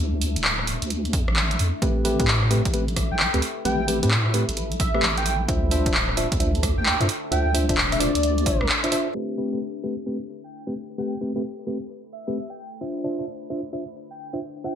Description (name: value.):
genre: UK garage, two-step garage.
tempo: 131 BPM.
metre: 4/4.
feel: swing 64% on 16ths.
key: A minor.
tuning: A4 = 439 Hz.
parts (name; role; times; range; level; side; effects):
deep soft wobble bass; bass; 0.0-8.7 s; D1 to A2; -24 LUFS; equal; chorus, sidechain pumping.
deep dark ambient pad; texture; 0.0-14.8 s; D4 to B5; -34 LUFS; left 3 dB; chorus, built-in reverb, sidechain pumping.
punchy analog drum machine; drums; 0.2-14.8 s; handclaps, hi-hat, rim click; -24 LUFS; right 1 dB; low-pass filter on hats, low-pass filter on snare, low-pass filter on room, gated reverb.
electronic kick drum; drums; 1.1-8.6 s; none; -26 LUFS; equal; none.
tine electric piano; stabs; 1.8-14.8 s; A3 to E5; -27 LUFS; equal; analog chorus, low-pass filter, ping-pong delay.
airy dreamy lead; melody; 3.1-14.8 s; D5 to G5; -29 LUFS; right 2 dB; chorus, ping-pong delay.
tube shaker; percussion; 9.1-14.8 s; none; -57 LUFS; equal; none.
room: light reverb.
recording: bright 1980s-style digital production, low-pass filter.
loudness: -21 LUFS.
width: side -9 dB against mid.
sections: 0.0-9.2 A section; 9.2-14.8 B section.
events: band accent 8.7.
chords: 0.0 Dmadd9; 1.8 Am9; 5.5 Dm9; 9.2 Am9; 12.8 Dm9.